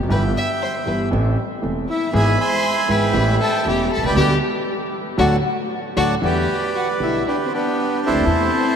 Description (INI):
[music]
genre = tango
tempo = 118 BPM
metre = 4/4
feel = rubato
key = unclear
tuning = A4 = 439 Hz
[part]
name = warm concert grand piano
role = accompaniment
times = 0.0-8.5 s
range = E1 to A4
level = -22 LUFS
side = right 1 dB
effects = none
[part]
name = upright bass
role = bass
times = 0.0-8.5 s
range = E1 to E2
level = -23 LUFS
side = right 1 dB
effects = none
[part]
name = bandoneon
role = melody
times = 0.1-8.8 s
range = D4 to E6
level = -22 LUFS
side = right 2 dB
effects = none
[part]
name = warm violin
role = second line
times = 0.1-8.8 s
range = B3 to E5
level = -23 LUFS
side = left 3 dB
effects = none
[sound]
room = wet cathedral reverb, RT60 5.7 s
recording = in a vast, echoing space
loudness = -17 LUFS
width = side -7 dB against mid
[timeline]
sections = 0.0-6.2 A section; 6.2-8.8 B section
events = band accent 4.2-6.2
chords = 0.1 Em/G; 1.1 Am; 2.1 E/G#; 3.1 A7; 4.2 G/D; 5.2 D; 6.2 Em7